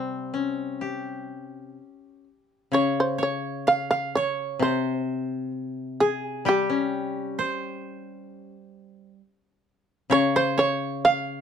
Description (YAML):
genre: japanese traditional, Japanese chamber music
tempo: 65 BPM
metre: 4/4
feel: rubato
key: C miyako bushi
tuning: A4 = 440 Hz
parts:
  - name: shamisen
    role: melody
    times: 0.0-11.4 s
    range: G4 to F5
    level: -22 LUFS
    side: right 1 dB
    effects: none
  - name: koto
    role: second line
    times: 0.0-11.4 s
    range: G4 to F5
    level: -29 LUFS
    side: right 5 dB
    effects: none
  - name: koto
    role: accompaniment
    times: 0.0-11.4 s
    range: C3 to G4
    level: -28 LUFS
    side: left 5 dB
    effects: none
room: light reverb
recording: dark, warm production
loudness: -23 LUFS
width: side -8 dB against mid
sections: 0.0-2.7 A section; 2.7-11.4 B section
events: none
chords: none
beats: 0.81 1.77 | 2.74 3.68 4.62 5.55 | 6.47 7.38 8.29 9.20 | 10.11 11.03